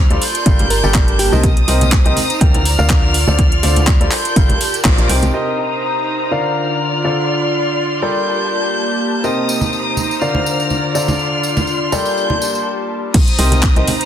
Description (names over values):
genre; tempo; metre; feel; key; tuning
piano house; 123 BPM; 4/4; swing 55% on 16ths; C dorian; A4 = 439 Hz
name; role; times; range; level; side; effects
warm studio violin section; sustained chords; 0.0-14.1 s; Bb3 to G6; -22 LUFS; left 1 dB; sidechain pumping, low-pass filter
organ-like FM bass; bass; 0.0-5.3, 13.4-13.8 s; G1 to D2; -16 LUFS; equal; sidechain pumping
airy breathy pad; texture; 0.0-14.1 s; D3 to C6; -22 LUFS; equal; chorus, sidechain pumping
clear upright piano; riff; 0.1-13.9 s; Bb2 to G5; -20 LUFS; left 1 dB; sidechain pumping, low-pass filter, tape echo
garage drum kit; drums; 0.1-5.3, 13.1-14.1 s; crash cymbal, handclaps, hi-hat; -20 LUFS; equal; none
tambourine and congas; percussion; 0.2-5.3, 9.2-14.1 s; none; -22 LUFS; right 1 dB; none
electronic kick drum; drums; 0.5-5.0, 13.1-13.7 s; none; -13 LUFS; equal; none
bell-like FM electric piano; melody; 0.7-1.5 s; G4 to Bb4; -23 LUFS; right 2 dB; chorus, tape echo
room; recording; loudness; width
light reverb; dense, heavily limited modern master; -13 LUFS; side -10 dB against mid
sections
0.0-5.3 A section; 5.3-13.1 B section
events
band accent 4.8; break 12.7-13.1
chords
0.2 Gmadd9; 1.4 Cm7; 2.4 Bb/D; 3.1 Dm7; 4.1 Gmadd9; 4.8 Bbadd9; 5.3 Cm7; 6.3 Bb/D; 7.0 Dm7; 8.0 Gmadd9; 9.2 Cm7; 10.2 Bb/D; 10.9 Dm7; 11.9 Gmadd9; 13.1 Cm7